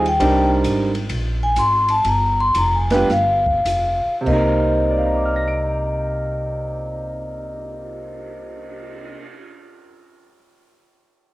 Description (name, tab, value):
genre	jazz, small-group swing and bop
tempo	94-135 BPM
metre	4/4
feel	swing 67% on 8ths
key	C minor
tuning	A4 = 437 Hz
part	vibraphone with soft mallets	melody	0.0-9.2 s	Eb5 to C6	-20 LUFS	left 1 dB	cassette tape, plate reverb
part	clear concert grand piano	accompaniment	0.0-10.4 s	C3 to D7	-22 LUFS	right 2 dB	cassette tape, plate reverb
part	upright bass	bass	0.0-9.1 s	F1 to Eb2	-24 LUFS	equal	none
part	open jazz drum kit	drums	0.1-9.2 s	crash cymbal, cymbal swell, hi-hat, kick drum, ride cymbal, snare drum	-32 LUFS	equal	none
room	light reverb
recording	home recording on cassette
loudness	-16 LUFS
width	side -17 dB against mid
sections	0.0-4.3 A section; 4.3-9.3 B section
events	slowing down 0.2-4.3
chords	0.2 Cm7; 3.1 Fsus2; 4.3 Cm7